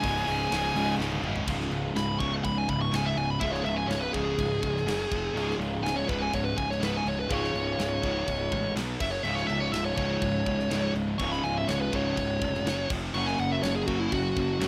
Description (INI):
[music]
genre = heavy metal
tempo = 123 BPM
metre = 4/4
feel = straight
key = C# major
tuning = A4 = 439 Hz
[part]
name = high-gain lead guitar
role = melody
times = 0.0-14.7 s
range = E4 to C#6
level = -33 LUFS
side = equal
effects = distortion, delay
[part]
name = high-gain lead guitar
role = second line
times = 0.0-1.0 s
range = G#4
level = -41 LUFS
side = equal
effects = none
[part]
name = fuzz guitar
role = riff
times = 0.0-14.7 s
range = C#2 to F#4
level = -33 LUFS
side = equal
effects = distortion
[part]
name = high-gain distorted guitar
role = riff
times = 0.0-14.7 s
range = C#2 to B3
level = -38 LUFS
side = equal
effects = distortion
[part]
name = scooped high-gain guitar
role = riff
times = 0.0-1.5 s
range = C#2 to C#3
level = -39 LUFS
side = equal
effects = none
[part]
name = fuzz picked electric bass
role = bass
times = 0.0-14.7 s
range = C#1 to B1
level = -36 LUFS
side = equal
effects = overdrive
[part]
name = tight metal drum kit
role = drums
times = 0.0-14.7 s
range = crash cymbal, hi-hat, kick drum, snare drum, toms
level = -39 LUFS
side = equal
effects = none
[sound]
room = light reverb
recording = rough home demo mix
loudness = -28 LUFS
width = mono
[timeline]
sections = 0.0-1.5 A section; 1.5-14.7 B section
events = half time 0.0-1.5; drum fill 1.0-1.5; lead electric guitar solo 1.5-14.7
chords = 0.0 C#5; 1.5 C#; 4.9 F#5; 5.1 F5; 5.4 C#; 8.8 B5; 9.0 F#5; 9.2 C#; 12.7 F#5; 12.9 F5; 13.1 F#